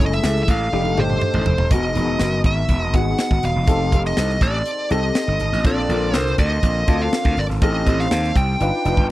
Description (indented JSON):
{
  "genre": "polished 1980s jazz-funk pop",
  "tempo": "122 BPM",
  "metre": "4/4",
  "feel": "straight",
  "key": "unclear",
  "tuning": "A4 = 441 Hz",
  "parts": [
    { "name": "nasal lead guitar with a parked wah", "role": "melody", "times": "0.0-9.1 s", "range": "C5 to G5", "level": "-23 LUFS", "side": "right 1 dB", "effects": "overdrive" },
    { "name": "warm grand piano", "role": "accompaniment", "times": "0.0-9.1 s", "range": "D3 to C5", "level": "-24 LUFS", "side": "left 2 dB", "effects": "ensemble chorus" },
    { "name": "gritty slap bass", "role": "bass", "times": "0.0-9.1 s", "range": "Eb1 to Eb2", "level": "-21 LUFS", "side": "equal", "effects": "overdrive" },
    { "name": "tight funk drum kit", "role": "drums", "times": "0.1-9.1 s", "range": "hi-hat, kick drum, snare drum, toms", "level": "-20 LUFS", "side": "equal", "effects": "none" }
  ],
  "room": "little or no reverb",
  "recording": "dry, close 1970s-style studio recording",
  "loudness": "-16 LUFS",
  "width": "side -16 dB against mid",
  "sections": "0.0-9.1 A section",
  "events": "drum fill 0.7-1.7",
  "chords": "0.0 F#m7; 0.7 F13; 1.7 Emaj7; 3.7 F7; 5.6 Bbmaj7; 7.6 Am7b5; 8.6 G7b13",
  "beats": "0.24 0.73 1.22 | 1.71 2.20 2.69 3.19 | 3.68 4.17 4.66 5.16 | 5.65 6.14 6.63 7.13 | 7.62 8.11 8.61 9.10"
}